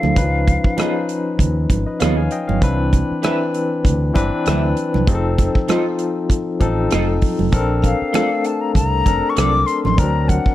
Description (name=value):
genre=lush 1970s-style soul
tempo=98 BPM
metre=4/4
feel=swing 54% on 16ths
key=unclear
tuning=A4 = 439 Hz
part: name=hollow concert flute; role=melody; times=0.0-1.1, 7.9-10.5 s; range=F5 to D6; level=-21 LUFS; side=left 4 dB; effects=none
part: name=barky tine electric piano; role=accompaniment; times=0.0-10.5 s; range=D#3 to G#5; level=-20 LUFS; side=left 3 dB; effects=medium tremolo
part: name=fingered electric bass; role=bass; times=0.0-10.5 s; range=F1 to D#2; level=-20 LUFS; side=equal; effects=none
part: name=modern studio drum kit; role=drums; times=0.0-10.5 s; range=hi-hat, kick drum, rim click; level=-18 LUFS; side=equal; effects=none
part: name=congas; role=percussion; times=0.0-10.4 s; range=none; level=-26 LUFS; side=right 8 dB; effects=none
part: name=electric guitar through a small old amp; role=riff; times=0.8-9.5 s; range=B3 to E5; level=-25 LUFS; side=right 4 dB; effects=wide subtle chorus
part: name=vibraphone with hard mallets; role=texture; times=7.8-9.1 s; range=F5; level=-32 LUFS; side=left 7 dB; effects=none
room=small room ambience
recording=dry, close 1970s-style studio recording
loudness=-15 LUFS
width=side -14 dB against mid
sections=0.0-10.5 A section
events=none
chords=0.2 C#9; 2.6 Cmaj9; 5.1 F7; 7.5 Bbmaj9; 10.0 D7b13